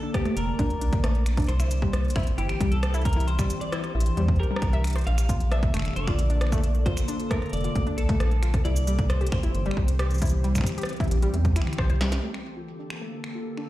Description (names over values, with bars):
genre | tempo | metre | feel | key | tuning
IDM | 134 BPM | 4/4 | straight | Bb lydian | A4 = 440 Hz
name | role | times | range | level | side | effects
twelve-string electric guitar | melody | 0.0-11.7 s | G4 to F5 | -34 LUFS | left 1 dB | vintage 12-bit sampler grit, digital delay
glassy FM pad | sustained chords | 0.0-13.7 s | D3 to D5 | -34 LUFS | equal | ensemble chorus, built-in reverb
warbly dusty pluck | arpeggios | 0.0-13.7 s | G3 to E5 | -33 LUFS | left 2 dB | chorus, ping-pong delay
electronic kick drum | drums | 0.1-11.9 s | none | -27 LUFS | equal | none
industrial drum kit | drums | 0.1-13.7 s | cabasa, finger snaps, hi-hat, rim click, snare drum, toms | -35 LUFS | equal | none
rubbery square bass | bass | 0.4-12.2 s | F1 to E2 | -24 LUFS | equal | none
room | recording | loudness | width
light reverb | played on a big sound system in a bare room, large studio reverb | -22 LUFS | side -15 dB against mid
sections
0.0-12.2 A section; 12.2-13.7 B section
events
drum fill 11.3-12.2; filter sweep on synth arpeggio sound 12.2-13.7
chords
0.0 Bb; 1.5 C; 5.1 Bbmaj7; 8.7 C; 12.2 Bbmaj7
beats
0.14 0.59 1.04 | 1.49 1.93 2.38 2.83 | 3.28 3.73 4.17 4.62 | 5.07 5.52 5.96 6.41 | 6.86 7.31 7.75 8.20 | 8.65 9.10 9.54 9.99 | 10.44 10.89 11.34 11.78 | 12.23 12.68 13.13 13.57